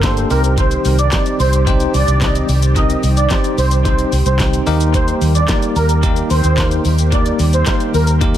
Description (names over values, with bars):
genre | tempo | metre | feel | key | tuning
dance-pop | 110 BPM | 4/4 | straight | unclear | A4 = 440 Hz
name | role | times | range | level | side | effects
filtered supersaw swell | melody | 0.0-8.0 s | Bb4 to Eb5 | -20 LUFS | right 2 dB | sidechain pumping, tape echo
bell-like tine electric piano | accompaniment | 0.0-8.4 s | Bb3 to Eb5 | -21 LUFS | left 2 dB | medium stereo tremolo, sidechain pumping
lush unison pad | sustained chords | 0.0-8.4 s | D3 to G4 | -24 LUFS | right 1 dB | chorus, sidechain pumping
vintage muted fingered electric bass | bass | 0.0-8.4 s | G1 to Eb2 | -15 LUFS | equal | sidechain pumping
pop drum kit | drums | 0.0-8.4 s | handclaps, hi-hat, kick drum, shaker, snare drum | -19 LUFS | equal | tape echo
room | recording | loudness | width
little or no reverb | echo-heavy mix | -12 LUFS | side -11 dB against mid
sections
0.0-8.4 A section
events
none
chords
0.3 Cm; 4.7 Eb